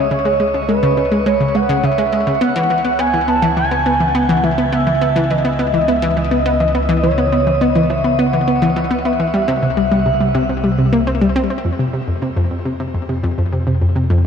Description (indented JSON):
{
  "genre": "ambient, sequencer-driven space music",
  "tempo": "104 BPM",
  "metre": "4/4",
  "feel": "straight",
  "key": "unclear",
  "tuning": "A4 = 440 Hz",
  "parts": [
    { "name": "expressive synth lead", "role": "melody", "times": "0.0-11.0 s", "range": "B4 to A5", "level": "-18 LUFS", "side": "right 1 dB", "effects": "wide subtle chorus, ping-pong delay" },
    { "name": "analog pluck", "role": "riff", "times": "0.0-14.3 s", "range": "F2 to C4", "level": "-16 LUFS", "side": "equal", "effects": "chorus, ping-pong delay" },
    { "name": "analog drone", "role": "bass", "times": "0.0-14.3 s", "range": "C2 to F2", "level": "-22 LUFS", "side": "equal", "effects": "chorus" }
  ],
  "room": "wet shimmer reverb, RT60 7.5 s",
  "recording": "dark, warm production",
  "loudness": "-14 LUFS",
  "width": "side -7 dB against mid",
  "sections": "0.0-11.6 A section; 11.6-14.3 B section",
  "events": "fade-in on synth drone 0.0-11.6",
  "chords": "0.0 C#m; 2.4 Emaj7/C#; 9.3 C; 11.6 F5"
}